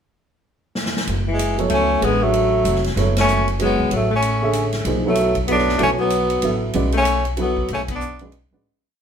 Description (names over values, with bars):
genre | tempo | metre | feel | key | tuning
modal jazz | 190 BPM | 3/4 | swing 62% on 8ths | F# minor | A4 = 440 Hz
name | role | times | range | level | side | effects
swinging big-band drum kit | drums | 0.8-8.4 s | hi-hat, kick drum, ride cymbal, snare drum | -28 LUFS | right 1 dB | none
upright bass | bass | 1.1-8.6 s | E#1 to C#2 | -23 LUFS | equal | none
clear tenor saxophone | melody | 1.3-8.2 s | G#3 to D4 | -20 LUFS | right 1 dB | none
bright alto saxophone | second line | 1.3-8.2 s | E3 to B3 | -23 LUFS | left 4 dB | none
warm baby grand piano | accompaniment | 1.6-8.6 s | D3 to E5 | -23 LUFS | right 3 dB | none
room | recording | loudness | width
wet studio reverb, RT60 0.7 s | band playing live in one room | -17 LUFS | side -8 dB against mid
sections
0.1-1.1 pickup bar; 1.1-8.6 A section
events
drum fill 0.8-1.1; band accent 3.1, 7.8; fade-out 7.1-8.6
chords
0.1 N.C.; 1.1 F#m9; 4.9 B7sus2